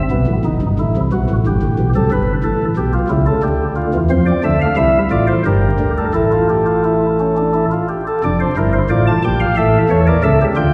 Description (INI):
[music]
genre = classical, baroque-style 3-part fugue for pipe organ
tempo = 90 BPM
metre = 3/4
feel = straight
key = D minor from 4.1 s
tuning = A4 = 442 Hz
[part]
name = chamber organ, flutes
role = solo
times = 0.0-10.7 s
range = F1 to A5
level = -15 LUFS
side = equal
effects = none
[sound]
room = wet concert hall reverb, RT60 2.2 s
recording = heard from further back in the room, vinyl crackle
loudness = -15 LUFS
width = mono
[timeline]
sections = 0.1-8.2 A section; 8.2-10.7 B section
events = none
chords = 0.1 B7; 1.5 Gadd9; 2.1 A7/G; 3.5 Dm; 4.1 F; 5.5 Gm; 6.2 A; 8.2 Dm/F; 9.6 A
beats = | 0.12 0.80 1.46 | 2.12 2.79 3.45 | 4.12 4.78 5.46 | 6.15 6.85 7.55 | 8.25 8.92 9.59 | 10.25